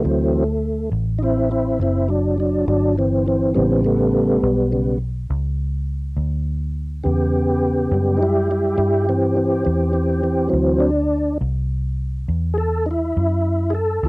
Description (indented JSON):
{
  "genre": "slow blues",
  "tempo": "69 BPM (dotted quarters)",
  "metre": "12/8",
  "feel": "straight",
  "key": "unclear",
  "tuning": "A4 = 441 Hz",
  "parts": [
    { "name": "tonewheel organ", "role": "sustained chords", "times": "0.0-14.1 s", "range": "C#3 to A4", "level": "-18 LUFS", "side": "equal", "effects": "slow rotary speaker, overdrive, chorus vibrato, cassette tape" },
    { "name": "vintage muted fingered electric bass", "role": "bass", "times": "0.0-14.1 s", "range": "F#1 to G2", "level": "-21 LUFS", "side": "equal", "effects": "none" }
  ],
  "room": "light reverb",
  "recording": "home recording on cassette",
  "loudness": "-17 LUFS",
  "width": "side -25 dB against mid",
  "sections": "0.0-14.1 A section",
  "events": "tonewheel organ solo 0.0-14.1",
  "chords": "0.1 D7; 3.6 A7; 10.5 D7"
}